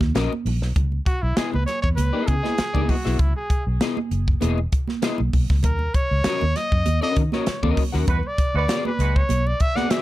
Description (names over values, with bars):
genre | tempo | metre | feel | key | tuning
funk | 98 BPM | 4/4 | straight | C# dorian | A4 = 440 Hz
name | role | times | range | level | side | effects
vintage muted fingered electric bass | bass | 0.0-9.5 s | E1 to D#3 | -22 LUFS | equal | none
crisp fusion drum kit | drums | 0.0-10.0 s | hi-hat, kick drum, snare drum | -23 LUFS | equal | none
congas | percussion | 0.0-10.0 s | none | -30 LUFS | right 8 dB | none
electric guitar at the edge of break-up | accompaniment | 0.1-10.0 s | B3 to F#5 | -26 LUFS | left 5 dB | analog chorus
bright trumpet | melody | 1.1-10.0 s | E4 to F#5 | -27 LUFS | equal | analog delay
warm horn section | second line | 8.1-9.2 s | G#3 to B4 | -28 LUFS | right 6 dB | none
room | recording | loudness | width
light reverb | dark, warm production | -19 LUFS | side -16 dB against mid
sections
0.8-10.0 A section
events
trumpet solo 0.8-10.0; band accent 8.1-10.0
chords
0.0 D#m7; 0.8 C#m9; 5.6 D#m7; 8.1 E9 (rootless)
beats
0.15 | 0.76 1.37 1.98 2.59 | 3.20 3.81 4.42 5.03 | 5.64 6.25 6.86 7.47 | 8.08 8.69 9.30 9.91